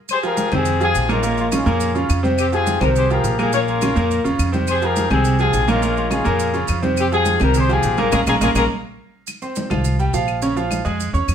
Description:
latin, salsa; 209 BPM; 4/4; straight; F minor; A4 = 440 Hz
clear horn section; melody; 0.1-8.6 s; Ab3 to Db5; -20 LUFS; left 3 dB
claves; percussion; 0.1-11.3 s; -32 LUFS; left 9 dB
congas; percussion; 0.1-11.3 s; -27 LUFS; equal
maracas; percussion; 0.1-11.3 s; -33 LUFS; right 7 dB
bright concert grand piano; accompaniment; 0.2-11.3 s; Bb2 to Db6; -20 LUFS; right 1 dB
upright bass; bass; 0.5-11.3 s; Bb1 to F2; -21 LUFS; right 1 dB
wet studio reverb, RT60 0.7 s; heard from further back in the room; -16 LUFS; side -8 dB against mid
0.1-9.3 A section; 9.3-11.3 B section
band accent 8.1-9.3; drum fill 8.7-9.3
0.1 Fmadd9; 1.2 Bbm7; 2.4 Fmadd9; 3.5 Bbm7; 4.7 Fmadd9; 5.8 Bbm7; 7.0 Fmadd9; 8.1 Bbm7; 9.3 Fsus2; 10.4 Bbm7
| 0.09 0.37 0.66 0.95 | 1.23 1.52 1.81 2.09 | 2.38 2.67 2.96 3.24 | 3.53 3.82 4.10 4.39 | 4.68 4.96 5.25 5.54 | 5.83 6.11 6.40 6.69 | 6.97 7.26 7.55 7.84 | 8.12 8.41 8.70 8.99 | 9.27 9.56 9.85 10.13 | 10.42 10.71 11.00 11.28

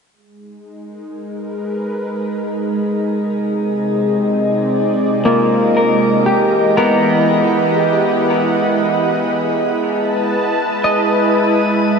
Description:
ambient; free time; G# minor; A4 = 439 Hz
overtone-sweeping drone; drone; 1.2-12.0 s; G#3; -18 LUFS; right 1 dB; chorus, built-in reverb, phaser
warm analog pad; sustained chords; 0.5-12.0 s; C3 to A5; -20 LUFS; left 1 dB; chorus
semi-hollow electric guitar; arpeggios; 5.3-12.0 s; A#3 to D#5; -16 LUFS; left 1 dB; lush chorus, ping-pong delay
wet shimmer reverb, RT60 7.5 s; dark, warm production, nothing above 11.0 kHz; -14 LUFS; side -5 dB against mid
0.1-12.0 A section
fade-in on analog synth pad 0.1-12.0
0.1 G#madd9; 3.2 Cmadd9; 6.2 Emadd9; 9.3 Asus2
free time

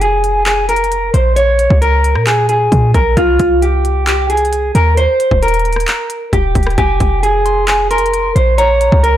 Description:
hip hop, trap; 133 BPM; 4/4; half-time; F minor; A4 = 440 Hz
mellow electric guitar; melody; 0.0-9.2 s; F4 to Db5; -13 LUFS; right 1 dB; low-pass filter
clean 808-style bass; bass; 0.0-9.2 s; Eb1 to Bb2; -14 LUFS; equal
trap drum kit; drums; 0.0-9.1 s; handclaps, hi-hat, kick drum, rim click; -18 LUFS; equal
soft synth bell; second line; 6.8-9.2 s; Ab5 to C6; -20 LUFS; equal; chorus, phaser, digital delay
light reverb; blown-out, overdriven recording, overdrive; -10 LUFS; side -12 dB against mid
0.0-9.2 A section
0.0 Fm; 1.4 Bbm7; 3.2 Cm; 5.0 Eb; 6.8 Fm; 8.6 Bbm
0.01 0.46 0.91 | 1.37 1.82 2.27 2.72 | 3.17 3.62 4.07 4.52 | 4.97 5.43 5.88 6.33 | 6.78 7.23 7.68 8.13 | 8.58 9.04

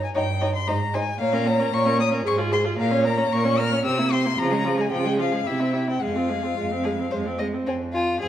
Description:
quick classical-period movement for string quartet; 113 BPM; 3/4; straight; F minor; A4 = 438 Hz
rich violin; melody; 0.0-8.3 s; E5 to F6; -27 LUFS; left 7 dB
clear cello; bass; 0.0-8.3 s; F2 to Db3; -26 LUFS; right 3 dB
rich violin; second line; 0.1-8.3 s; C4 to Eb5; -27 LUFS; left 1 dB
clear viola; accompaniment; 0.2-8.3 s; F3 to Ab4; -26 LUFS; right 1 dB
wet stone room reverb, RT60 1.2 s; -20 LUFS; side -10 dB against mid
0.0-7.7 A section
0.0 Eb7/G; 0.7 Ab5; 1.2 Bbm; 2.3 Fm/Ab; 2.8 Bbm; 3.8 C7; 4.4 Db; 5.5 C; 6.0 Fm
0.15 0.68 | 1.20 1.73 2.26 | 2.79 3.32 3.85 | 4.38 4.92 5.46 | 6.02 6.58 7.13 | 7.68 8.22

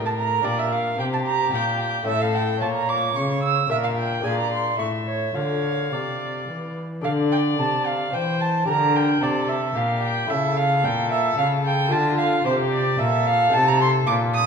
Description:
classical, baroque-style sonata movement with continuo; 111 BPM; 3/4; straight; D minor; A4 = 440 Hz
dark violin; melody; 0.0-14.5 s; F4 to F5; -29 LUFS; left 7 dB
lute; accompaniment; 0.0-14.5 s; A2 to Bb4; -28 LUFS; left 3 dB
dark cello; bass; 0.0-14.5 s; A2 to E3; -25 LUFS; equal
dark violin; second line; 0.1-14.5 s; C5 to E6; -23 LUFS; right 4 dB
wet recital hall reverb, RT60 1.4 s; minimal, uncompressed stereo recording; -19 LUFS; side -6 dB against mid
0.0-7.0 A section; 7.0-14.5 B section
0.0 Gm; 2.1 A; 3.7 Gm/Bb; 4.3 Bb7; 4.8 A; 5.4 Dm; 7.0 D5; 8.7 Gm; 10.3 A; 11.9 Dm; 13.5 Adim
| 0.45 0.99 1.53 | 2.07 2.62 3.16 | 3.71 4.25 4.80 | 5.36 5.93 6.49 | 7.05 7.59 8.14 | 8.68 9.22 9.76 | 10.30 10.84 11.38 | 11.92 12.45 12.99 | 13.53 14.07

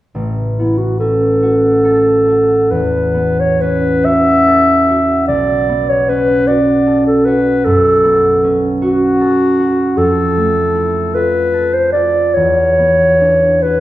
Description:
classical, impressionist duo for clarinet and harp; 44-52 BPM (dotted quarters); 12/8; rubato; A major; A4 = 440 Hz
concert harp; accompaniment; 0.1-13.8 s; A1 to A4; -15 LUFS; right 1 dB
mellow clarinet; melody; 0.6-13.8 s; E4 to E5; -12 LUFS; equal
wet recital hall reverb, RT60 1.6 s; recorded in a church or concert hall; -10 LUFS; side -15 dB against mid
0.2-13.8 A section
0.2 A69; 5.3 Bsus2; 10.0 Fmaj7; 12.4 E7(no3)
| 0.15 1.42 2.70 4.05 | 5.28 6.47 7.66 8.82 | 9.98 11.16 12.35 13.63

